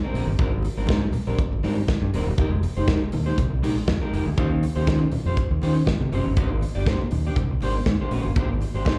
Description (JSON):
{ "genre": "disco", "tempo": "120 BPM", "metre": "4/4", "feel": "straight", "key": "unclear", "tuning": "A4 = 439 Hz", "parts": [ { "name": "electric guitar at the edge of break-up", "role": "accompaniment", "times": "0.0-9.0 s", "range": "G3 to D5", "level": "-30 LUFS", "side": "equal", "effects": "lush chorus, slapback echo" }, { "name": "modern bright fingered electric bass", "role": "bass", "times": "0.1-9.0 s", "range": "Eb1 to Eb3", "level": "-26 LUFS", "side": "equal", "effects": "none" }, { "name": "modern studio drum kit", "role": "drums", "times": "0.2-9.0 s", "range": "hi-hat, kick drum, snare drum", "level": "-27 LUFS", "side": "equal", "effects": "none" }, { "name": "congas", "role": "percussion", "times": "0.3-9.0 s", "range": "none", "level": "-34 LUFS", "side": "equal", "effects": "none" } ], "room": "studio reverb", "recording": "live gig heard through the venue's PA, club reverb", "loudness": "-23 LUFS", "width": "mono", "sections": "0.0-9.0 A section", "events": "none", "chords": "0.0 Abmaj9#11; 2.4 Fm11; 4.4 Eb13; 6.4 Abmaj9#11", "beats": "| 0.39 0.89 1.38 1.88 | 2.38 2.88 3.38 3.88 | 4.37 4.87 5.37 5.87 | 6.37 6.87 7.37 7.86 | 8.36 8.86" }